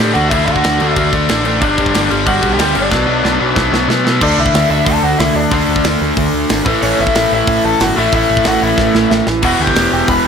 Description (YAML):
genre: punk rock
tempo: 184 BPM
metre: 4/4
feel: straight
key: unclear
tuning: A4 = 444 Hz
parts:
  - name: lead guitar through a small cranked amp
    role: melody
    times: 0.0-10.3 s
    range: C#4 to B5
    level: -16 LUFS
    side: left 2 dB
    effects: overdrive
  - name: biting overdriven guitar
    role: riff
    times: 0.0-10.3 s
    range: E2 to D4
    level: -14 LUFS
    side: equal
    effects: none
  - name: growling picked electric bass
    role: bass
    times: 0.0-10.3 s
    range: E1 to B2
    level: -20 LUFS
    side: right 1 dB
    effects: overdrive
  - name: tight metal drum kit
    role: drums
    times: 0.0-10.2 s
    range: crash cymbal, hi-hat, kick drum, snare drum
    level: -18 LUFS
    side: right 1 dB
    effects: none
room: light reverb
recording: none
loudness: -11 LUFS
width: side -6 dB against mid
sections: 0.0-4.2 A section; 4.2-10.3 B section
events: drum fill 2.9-4.2, 8.8-9.4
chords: 0.0 D; 1.6 G5; 2.9 Bm; 4.2 D5; 6.7 A5; 9.4 Em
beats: | 0.31 0.64 0.97 1.29 | 1.62 1.94 2.27 2.60 | 2.92 3.25 3.57 3.90 | 4.22 4.55 4.88 5.20 | 5.53 5.85 6.18 6.50 | 6.83 7.16 7.48 7.81 | 8.13 8.46 8.78 9.11 | 9.44 9.76 10.09